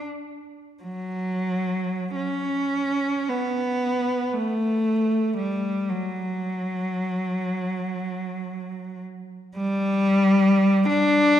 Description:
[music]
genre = classical, free, expressive piece for unaccompanied cello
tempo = 32-60 BPM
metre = 4/4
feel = rubato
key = unclear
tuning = A4 = 440 Hz
[part]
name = clear cello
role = solo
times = 0.0-11.4 s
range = F#3 to D4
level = -22 LUFS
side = equal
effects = none
[sound]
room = wet concert hall reverb, RT60 2.1 s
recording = dark, warm production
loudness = -22 LUFS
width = side -11 dB against mid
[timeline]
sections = 0.8-11.4 A section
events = none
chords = none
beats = | 0.83 2.16 3.29 4.33 | 5.38 6.42 7.47 8.48 | 9.57 10.88

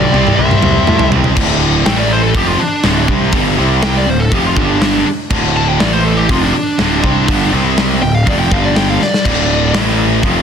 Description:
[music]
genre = hard rock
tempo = 122 BPM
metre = 4/4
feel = straight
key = D minor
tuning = A4 = 440 Hz
[part]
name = high-gain lead guitar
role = melody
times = 0.0-9.7 s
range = D4 to A5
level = -18 LUFS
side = equal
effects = distortion, digital delay
[part]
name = octave-fuzz lead guitar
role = second line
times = 0.0-1.1 s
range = G4 to C5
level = -22 LUFS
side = right 1 dB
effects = distortion
[part]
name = high-gain distorted guitar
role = riff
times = 0.0-10.4 s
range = D2 to C4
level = -17 LUFS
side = left 13 dB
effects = distortion
[part]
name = overdriven semi-hollow guitar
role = riff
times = 0.0-10.4 s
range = D2 to C4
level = -17 LUFS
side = right 11 dB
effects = none
[part]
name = fuzz picked electric bass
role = bass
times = 0.0-10.4 s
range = D1 to A2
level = -17 LUFS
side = equal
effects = overdrive
[part]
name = big rock drum kit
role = drums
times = 0.1-10.4 s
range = crash cymbal, hi-hat, kick drum, snare drum, toms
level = -16 LUFS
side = left 1 dB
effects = none
[sound]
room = small room ambience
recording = dense, heavily limited modern master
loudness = -10 LUFS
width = side -7 dB against mid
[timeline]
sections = 0.0-1.4 A section; 1.4-10.4 B section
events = drum fill 0.0-1.4, 9.0; lead electric guitar solo 1.4-10.4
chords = 0.1 C; 1.4 D5; 1.9 A5; 2.4 Dm; 3.6 C5; 4.1 Dm; 4.6 G5; 5.1 D5; 5.8 A5; 6.3 Dm; 7.5 C5; 8.0 Dm; 8.5 G5; 9.0 D5; 9.7 A5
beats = 0.39 0.88 | 1.37 1.86 2.36 2.85 | 3.34 3.84 4.33 4.82 | 5.32 5.81 6.30 6.79 | 7.29 7.78 8.27 8.76 | 9.26 9.75 10.24

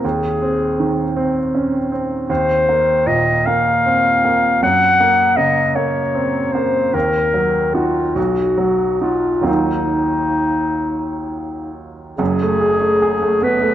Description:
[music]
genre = classical, impressionist duo for clarinet and grand piano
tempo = 43-54 BPM (dotted quarters)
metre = 6/8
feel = rubato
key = Eb dorian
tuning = A4 = 442 Hz
[part]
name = warm clarinet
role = melody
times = 0.0-13.7 s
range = Eb4 to Gb5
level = -16 LUFS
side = left 2 dB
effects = none
[part]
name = clear baby grand piano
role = accompaniment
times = 0.0-13.7 s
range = F#1 to G#4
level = -19 LUFS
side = right 3 dB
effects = none
[sound]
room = moderate recital hall reverb, RT60 1.8 s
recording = dark, warm production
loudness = -14 LUFS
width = side -11 dB against mid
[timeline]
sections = 0.0-12.2 A section; 12.2-13.7 B section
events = none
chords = 0.0 Ab/Eb; 2.3 Eb5; 4.6 Gb; 6.9 Ebm; 8.2 B; 9.5 Ebmadd9; 12.2 F#madd9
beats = | 0.04 1.17 | 2.29 3.46 | 4.62 5.77 | 6.94 8.17 | 9.47 10.85 | 12.20 13.43

